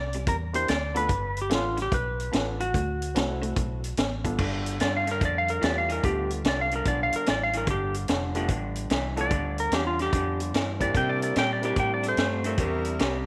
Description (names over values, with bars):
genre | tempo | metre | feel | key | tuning
electric blues shuffle | 146 BPM | 4/4 | swing 66% on 8ths | G mixolydian | A4 = 436 Hz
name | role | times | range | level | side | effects
clean lap steel guitar | melody | 0.0-12.9 s | F4 to G5 | -30 LUFS | equal | none
electric guitar through a small old amp | riff | 0.0-13.2 s | G2 to B3 | -35 LUFS | equal | none
vintage muted fingered electric bass | bass | 0.0-13.3 s | F1 to C3 | -34 LUFS | equal | none
vintage drum kit | drums | 0.1-13.1 s | crash cymbal, hi-hat, kick drum, snare drum | -31 LUFS | equal | none
warm grand piano | accompaniment | 0.5-12.2 s | G2 to Bb4 | -38 LUFS | equal | none
warm saxophone section | stabs | 10.9-13.1 s | D4 to Bb4 | -37 LUFS | equal | none
room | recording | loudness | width
light reverb, small room reverb | none | -27 LUFS | mono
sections
0.0-4.4 A section; 4.4-13.3 B section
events
electric slide guitar solo 4.4-13.3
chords
0.0 C9; 1.1 G9; 2.7 D9; 4.4 G9; 11.0 C9